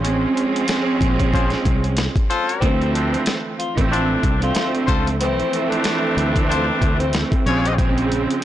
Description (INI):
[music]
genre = hip hop, boom-bap hip-hop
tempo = 93 BPM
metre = 4/4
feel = swing 56% on 16ths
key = D minor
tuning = A4 = 440 Hz
[part]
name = warm studio string section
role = accompaniment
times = 0.0-8.4 s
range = D2 to Db4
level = -21 LUFS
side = right 3 dB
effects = high-pass filter, low-pass filter
[part]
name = fingered electric bass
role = bass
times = 0.0-8.3 s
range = A1 to D2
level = -22 LUFS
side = equal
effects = transformer saturation
[part]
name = dusty soul sampler-style drum kit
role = drums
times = 0.0-8.4 s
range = hi-hat, kick drum, snare drum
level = -21 LUFS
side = equal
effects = none
[part]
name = mellow trumpet section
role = stabs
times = 1.3-7.7 s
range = F4 to Db5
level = -27 LUFS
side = left 5 dB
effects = high-pass filter, low-pass filter, tape echo
[part]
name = breathy tenor saxophone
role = melody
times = 2.6-7.1 s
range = C4 to F4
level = -25 LUFS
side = left 3 dB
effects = high-pass filter, low-pass filter, tape echo
[sound]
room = small room ambience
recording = blown-out, overdriven recording, overdrive, nothing above 10.7 kHz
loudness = -17 LUFS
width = side -12 dB against mid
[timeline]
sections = 0.0-8.4 A section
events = none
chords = 0.0 Bbm9; 2.6 Dm9; 7.5 Bbm9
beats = | 0.04 0.69 1.33 1.98 | 2.62 3.27 3.91 4.56 | 5.20 5.85 6.50 7.14 | 7.79 8.43